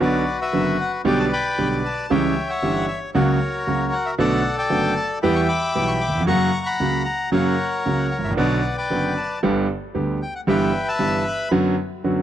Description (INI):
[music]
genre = tango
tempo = 115 BPM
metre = 4/4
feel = rubato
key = B minor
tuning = A4 = 441 Hz
[part]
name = bandoneon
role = melody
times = 0.0-11.5 s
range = F#4 to D6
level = -23 LUFS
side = left 2 dB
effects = none
[part]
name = clear concert grand piano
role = accompaniment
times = 0.0-12.2 s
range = F#1 to G4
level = -20 LUFS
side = right 2 dB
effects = none
[sound]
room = small room ambience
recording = dry, close 1970s-style studio recording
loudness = -19 LUFS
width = side -11 dB against mid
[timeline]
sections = 0.0-12.2 A section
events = none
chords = 0.0 Bm; 1.0 G/B; 2.1 C#dim; 3.1 F#/C#; 4.2 Bm7; 5.2 Em; 6.3 F#; 8.4 Bm; 9.4 G; 10.5 Em/G; 11.5 Bmadd9/F#